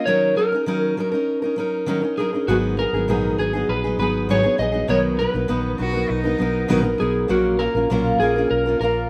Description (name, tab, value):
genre	pop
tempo	100 BPM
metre	4/4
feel	straight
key	Eb minor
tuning	A4 = 440 Hz
part	electric slide guitar	melody	0.0-9.1 s	Gb4 to Eb5	-24 LUFS	equal	none
part	fingerpicked steel-string acoustic guitar	accompaniment	0.0-9.1 s	Ab2 to Bb4	-23 LUFS	equal	none
part	vintage muted fingered electric bass	bass	2.5-9.1 s	Ab1 to B1	-29 LUFS	equal	none
part	clear cello	second line	5.8-6.8 s	D#4 to F#4	-32 LUFS	equal	none
room	light reverb, studio ambience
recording	rough home demo mix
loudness	-21 LUFS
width	mono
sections	0.0-9.1 A section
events	none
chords	0.1 Ebm7; 2.5 Abm7; 4.9 Bmaj7; 7.3 Gbmaj7/Bb